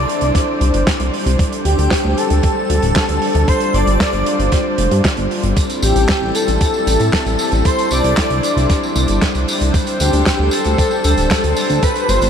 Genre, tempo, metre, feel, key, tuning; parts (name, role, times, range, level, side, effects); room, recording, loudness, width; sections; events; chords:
synthwave; 115 BPM; 4/4; straight; A4 = 440 Hz
soft supersaw; melody; 0.0-12.3 s; G4 to D5; -21 LUFS; left 1 dB; vintage 12-bit sampler grit, diffuse ambient delay, shimmer reverb
airy dreamy lead; second line; 0.0-12.3 s; G5 to D6; -24 LUFS; equal; chorus, diffuse ambient delay, shimmer reverb
chorused pulse-width pad; sustained chords; 0.0-12.3 s; G3 to C5; -20 LUFS; left 1 dB; sidechain pumping, shimmer reverb
chorused synth bass; bass; 0.0-12.3 s; D1 to A2; -16 LUFS; equal
loose indie drum kit; drums; 0.1-12.3 s; handclaps, hi-hat, snare drum, tambourine; -21 LUFS; right 1 dB
electronic kick drum; drums; 0.3-11.9 s; -18 LUFS; equal
wet huge ambient reverb, RT60 7.5 s; dreamy mix soaked in reverb; -13 LUFS; side -8 dB against mid
0.0-12.3 A section
0.0 Cadd9; 1.4 D7sus4; 3.5 G7sus4; 5.6 Am7; 7.7 Cadd9; 9.7 D7sus4